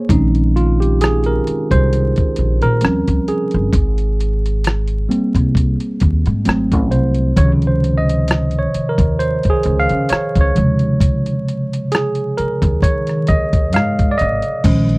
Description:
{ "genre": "R&B, neo-soul", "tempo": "66 BPM", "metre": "4/4", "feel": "swing 54% on 16ths", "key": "unclear", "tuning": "A4 = 441 Hz", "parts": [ { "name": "tine electric piano", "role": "accompaniment", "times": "0.0-15.0 s", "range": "C3 to F5", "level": "-17 LUFS", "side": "right 1 dB", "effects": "none" }, { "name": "upright bass", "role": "bass", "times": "0.1-15.0 s", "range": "G1 to Eb3", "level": "-17 LUFS", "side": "equal", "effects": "none" }, { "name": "dusty soul sampler-style drum kit", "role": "drums", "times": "0.1-15.0 s", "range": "crash cymbal, hi-hat, kick drum, rim click", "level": "-17 LUFS", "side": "equal", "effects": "none" } ], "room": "little or no reverb", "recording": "dry, close 1970s-style studio recording, vinyl crackle", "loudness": "-13 LUFS", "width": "side -25 dB against mid", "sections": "0.1-14.6 A section", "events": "tine electric piano solo 0.1-14.6", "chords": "0.1 Bbm11; 2.8 Eb13; 3.7 Abmaj9; 6.5 Ab7b9; 7.4 Dbmaj7; 10.6 Eb13sus4", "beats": "| 0.10 1.00 1.91 2.82 | 3.73 4.64 5.55 6.46 | 7.37 8.28 9.19 10.10 | 11.01 11.91 12.82 13.73 | 14.64" }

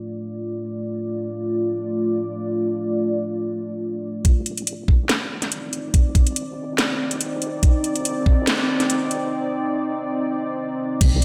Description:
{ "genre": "deep dubstep", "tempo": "142 BPM", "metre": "4/4", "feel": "swing 54% on 16ths, half-time", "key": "C dorian", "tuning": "A4 = 439 Hz", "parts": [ { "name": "deep dark ambient pad", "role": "sustained chords", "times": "0.0-11.2 s", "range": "A3 to D5", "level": "-26 LUFS", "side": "equal", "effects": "chorus, built-in reverb" }, { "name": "deep soft wobble bass", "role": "bass", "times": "4.2-11.2 s", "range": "G1 to C2", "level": "-31 LUFS", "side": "equal", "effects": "chorus, high-pass filter" }, { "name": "electronic kick drum", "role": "drums", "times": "4.2-8.4, 11.0-11.1 s", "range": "none", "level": "-18 LUFS", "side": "equal", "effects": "studio ambience" }, { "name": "garage drum kit", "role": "drums", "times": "4.2-11.2 s", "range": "crash cymbal, hi-hat, snare drum", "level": "-25 LUFS", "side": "equal", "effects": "low-pass filter on hats, studio ambience, low-pass filter on snare, low-pass filter on cymbals" } ], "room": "wet lush hall reverb, RT60 1.8 s, digital ambience", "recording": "dreamy mix soaked in reverb", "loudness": "-23 LUFS", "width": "mono", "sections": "0.0-4.2 A section; 4.2-11.0 B section", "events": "filter sweep on ambient pad 0.0-4.2; build-up 4.2-11.0; break 9.3-11.0", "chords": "0.0 Dm; 4.2 Cmadd9", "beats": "0.02 0.45 | 0.87 1.29 1.71 2.14 | 2.56 2.98 3.40 3.83 | 4.25 4.67 5.09 5.52 | 5.94 6.36 6.78 7.21 | 7.63 8.05 8.47 8.90 | 9.32 9.74 10.16 10.59 | 11.01" }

